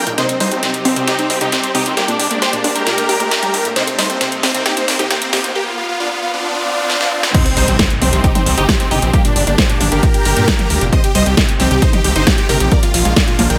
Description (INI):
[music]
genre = uplifting trance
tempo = 134 BPM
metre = 4/4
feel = straight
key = C minor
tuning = A4 = 440 Hz
[part]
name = big supersaw lead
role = melody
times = 0.0-13.6 s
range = Bb3 to G5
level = -20 LUFS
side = equal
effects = phaser, sidechain pumping, tape echo
[part]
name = supersaw pad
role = sustained chords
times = 0.0-13.6 s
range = C3 to G4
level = -27 LUFS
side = equal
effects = sidechain pumping
[part]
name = gritty driven synth bass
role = bass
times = 0.0-13.6 s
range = F1 to G2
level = -21 LUFS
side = equal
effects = tube saturation, sidechain pumping, high-pass filter
[part]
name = riser and impact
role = sound effects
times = 0.0-9.1 s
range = none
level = -27 LUFS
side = equal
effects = none
[part]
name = unison pluck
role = arpeggios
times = 0.1-13.4 s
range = Bb2 to G4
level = -26 LUFS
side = equal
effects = sidechain pumping, delay
[part]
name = big-room dance drum kit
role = drums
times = 0.1-13.6 s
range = crash cymbal, hi-hat, snare drum, toms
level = -20 LUFS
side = equal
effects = high-pass filter on hats, high-pass filter on toms, high-pass filter on snare, high-pass filter on cymbals, high-pass filter on room
[part]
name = electronic kick drum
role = drums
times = 7.3-13.3 s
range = none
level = -18 LUFS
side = equal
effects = none
[sound]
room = light reverb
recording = high-pass filter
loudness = -15 LUFS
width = mono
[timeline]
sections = 0.0-7.3 A section; 7.3-13.6 B section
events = build-up 0.0-7.3; riser 0.0-7.3; filter sweep on synth pluck 0.0-7.3; drum fill 0.2-5.6, 6.9-7.3; drop 7.3-13.6; impact 7.3-9.1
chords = 0.2 Cm; 2.0 Gm; 3.8 Cm; 5.6 Bb (rootless); 7.3 Cm; 9.1 Gm; 10.9 Cm; 12.7 Bb7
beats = | 0.18 0.63 1.07 1.52 | 1.97 2.42 2.87 3.31 | 3.76 4.21 4.66 5.11 | 5.55 6.00 6.45 6.90 | 7.34 7.79 8.24 8.69 | 9.13 9.58 10.03 10.48 | 10.93 11.37 11.82 12.27 | 12.72 13.16